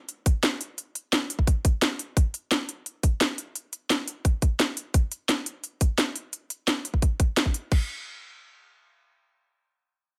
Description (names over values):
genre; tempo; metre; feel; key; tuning
dark technical drum and bass; 173 BPM; 4/4; straight; none; none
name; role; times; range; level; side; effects
drum and bass drum kit; drums; 0.1-7.8 s; crash cymbal, hi-hat, snare drum; -28 LUFS; equal; none
electronic kick drum; drums; 0.3-7.8 s; none; -24 LUFS; equal; overdrive
room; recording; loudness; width
little or no reverb; none; -26 LUFS; mono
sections
0.0-7.7 A section; 7.7-10.2 B section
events
none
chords
none